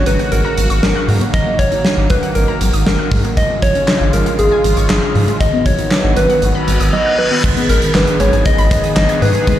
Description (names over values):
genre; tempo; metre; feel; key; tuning
synth-pop; 118 BPM; 4/4; straight; G# minor; A4 = 440 Hz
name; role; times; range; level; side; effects
soft struck synth lead; melody; 0.0-9.6 s; G#4 to D#5; -17 LUFS; left 1 dB; chorus, ping-pong delay
sweeping resonant pad; sustained chords; 0.0-9.6 s; C#3 to G#4; -22 LUFS; right 1 dB; chorus
warbly dusty pluck; arpeggios; 0.0-9.6 s; E#3 to G#6; -23 LUFS; left 1 dB; chorus, phaser, ping-pong delay
round analog bass; bass; 0.0-9.6 s; G#1 to G#2; -16 LUFS; equal; none
huge arena drum kit; drums; 0.1-9.6 s; crash cymbal, handclaps, hi-hat, kick drum, snare drum; -17 LUFS; equal; none
reverse cymbal and impact; sound effects; 6.6-9.5 s; none; -22 LUFS; left 1 dB; none
room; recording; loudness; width
light reverb, small room ambience; played on a big sound system in a bare room, stone room reverb; -12 LUFS; side -12 dB against mid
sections
0.0-7.4 A section; 7.4-9.6 B section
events
reverse cymbal 6.6-7.4; silent gap 6.9-7.4; impact 7.4-9.5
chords
0.0 F#/G#; 1.3 D#m/G#; 3.4 C#/G#; 5.4 B/G#; 7.4 G#m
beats
0.32 0.83 | 1.34 1.85 2.35 2.86 | 3.37 3.88 4.39 4.90 | 5.41 5.91 6.42 6.93 | 7.44 7.95 8.46 8.96 | 9.47